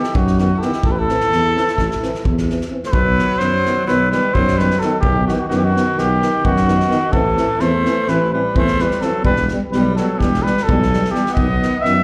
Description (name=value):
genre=balkan folk, Balkan brass band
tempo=257 BPM (eighths)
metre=9/8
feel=straight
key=unclear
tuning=A4 = 444 Hz
part: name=dark trumpet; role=melody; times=0.0-12.0 s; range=F#4 to E5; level=-21 LUFS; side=equal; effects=slapback echo
part: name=growling alto saxophone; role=second line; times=0.0-12.0 s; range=D#3 to G4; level=-27 LUFS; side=equal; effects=slapback echo
part: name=natural country drum kit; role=percussion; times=0.0-11.9 s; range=kick drum, snare drum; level=-24 LUFS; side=equal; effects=none
part: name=mellow tuba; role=bass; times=0.1-12.0 s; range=E1 to F#2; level=-22 LUFS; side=equal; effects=none
part: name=dark euphonium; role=accompaniment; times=0.4-11.9 s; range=B3 to C4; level=-28 LUFS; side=equal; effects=slapback echo
part: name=warm euphonium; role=accompaniment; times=0.4-11.9 s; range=D#3 to G3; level=-28 LUFS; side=equal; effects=slapback echo
room=studio ambience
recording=live gig heard through the venue's PA, club reverb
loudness=-17 LUFS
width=mono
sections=0.0-2.9 A section; 2.9-12.0 B section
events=none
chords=0.0 B; 0.8 Am; 2.9 B; 7.1 Am; 9.2 Em; 11.4 B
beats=0.13 0.36 0.59 | 0.82 1.06 1.29 1.52 1.76 1.99 2.22 2.46 2.69 | 2.92 3.15 3.39 3.62 3.85 4.09 4.32 4.55 4.79 | 5.02 5.25 5.49 5.72 5.95 6.19 6.42 6.65 6.89 | 7.12 7.36 7.59 7.83 8.06 8.29 8.53 8.76 9.00 | 9.23 9.47 9.71 9.94 10.18 10.41 10.65 10.89 11.12 | 11.36 11.60 11.83